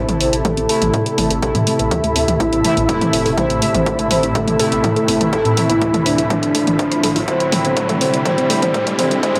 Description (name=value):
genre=melodic techno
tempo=123 BPM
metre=4/4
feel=straight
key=unclear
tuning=A4 = 440 Hz
part: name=soft octave-layered synth lead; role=melody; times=0.0-9.4 s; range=D4 to C5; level=-23 LUFS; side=equal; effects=chorus, tremolo, sidechain pumping
part: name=lush unison pad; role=sustained chords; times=0.0-9.4 s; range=C3 to E4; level=-30 LUFS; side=equal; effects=none
part: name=unison pluck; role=arpeggios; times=0.0-9.4 s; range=E3 to C5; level=-29 LUFS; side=equal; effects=none
part: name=analog synth brass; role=stabs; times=0.0-9.4 s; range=C3 to E4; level=-24 LUFS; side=equal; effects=chorus, sidechain pumping, tape echo
part: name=dark detuned saw bass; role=bass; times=0.0-9.4 s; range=E1 to A2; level=-28 LUFS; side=equal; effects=sidechain pumping
part: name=swarming drone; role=drone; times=1.3-9.4 s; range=A2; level=-32 LUFS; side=equal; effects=none
part: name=riser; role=sound effects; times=0.0-9.4 s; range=none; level=-29 LUFS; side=equal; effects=none
part: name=granular cloud pad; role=texture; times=0.0-9.4 s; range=C4 to B5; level=-26 LUFS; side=equal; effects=built-in reverb, sidechain pumping
part: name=punchy analog drum machine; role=drums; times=0.1-9.4 s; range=hi-hat, toms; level=-24 LUFS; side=equal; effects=sidechain pumping on hats, sidechain pumping on toms
part: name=electronic kick drum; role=drums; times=0.4-9.3 s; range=none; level=-26 LUFS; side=equal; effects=high-pass filter on kick
room=light reverb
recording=dry, gritty hardware recording, high-pass filter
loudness=-17 LUFS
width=mono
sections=0.0-9.4 A section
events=build-up 0.0-9.4; riser 0.0-9.4; drum fill 7.3-9.4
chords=0.0 Cadd9